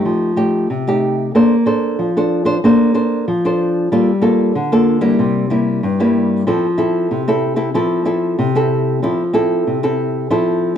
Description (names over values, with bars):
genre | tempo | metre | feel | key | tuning
samba | 94 BPM | 4/4 | straight | F major | A4 = 439 Hz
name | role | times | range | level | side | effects
nylon-string guitar | solo | 0.0-10.8 s | G2 to C5 | -14 LUFS | equal | none
room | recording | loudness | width
moderate large studio reverb, RT60 1.2 s | band playing live in one room | -14 LUFS | side -9 dB against mid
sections
0.0-10.8 A section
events
none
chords
0.1 F9; 1.3 Bbmaj9; 3.9 Gm9; 5.2 C7; 6.5 Fmaj7